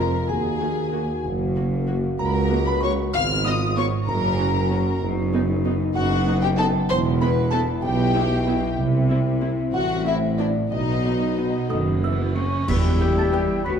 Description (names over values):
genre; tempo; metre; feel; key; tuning
cinematic, playful, whimsical film cue; 63 BPM (dotted quarters); 6/8; straight; E minor from 5.0 s; A4 = 440 Hz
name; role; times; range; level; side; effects
dark studio violin section; melody; 0.0-13.4 s; B4 to F6; -29 LUFS; left 5 dB; none
music box; melody; 0.0-13.8 s; D5 to C#7; -32 LUFS; right 2 dB; none
warm chamber violin section; second line; 0.0-13.4 s; D4 to F5; -28 LUFS; left 4 dB; none
warm chamber viola section; accompaniment; 0.0-13.4 s; A3 to Gb4; -31 LUFS; right 2 dB; none
warm French horn section; sustained chords; 0.0-13.8 s; Ab3 to G4; -27 LUFS; left 3 dB; none
dark chamber double bass section; bass; 0.0-13.8 s; E1 to E2; -25 LUFS; right 2 dB; none
mellow tuba; bass; 0.0-13.8 s; E1 to Eb2; -28 LUFS; right 3 dB; none
warm studio cello section; bass; 0.0-13.7 s; Db2 to C#4; -27 LUFS; right 2 dB; none
cymbal swell, clash cymbals and concert bass drum; percussion; 8.8-13.8 s; none; -30 LUFS; left 1 dB; none
mellow large flute ensemble; second line; 11.7-13.7 s; D#5 to C#6; -32 LUFS; left 2 dB; none
warm clarinet; second line; 12.7-13.8 s; E4 to F#4; -31 LUFS; equal; none
warm oboe; second line; 12.7-13.8 s; B4 to E5; -33 LUFS; right 2 dB; none
mellow bassoon; accompaniment; 12.7-13.8 s; F#3 to G3; -30 LUFS; right 3 dB; none
room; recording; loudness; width
moderate scoring stage reverb, RT60 1.7 s; dark, warm production; -19 LUFS; side -7 dB against mid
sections
0.0-12.7 A section; 12.7-13.8 B section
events
band accent 12.7-13.3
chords
0.3 Ebm; 1.3 Gb; 3.1 Fdim/Ab; 4.1 Gb; 5.0 B/F#; 6.9 Em; 8.8 C; 9.7 D9/A; 10.7 B; 12.7 Em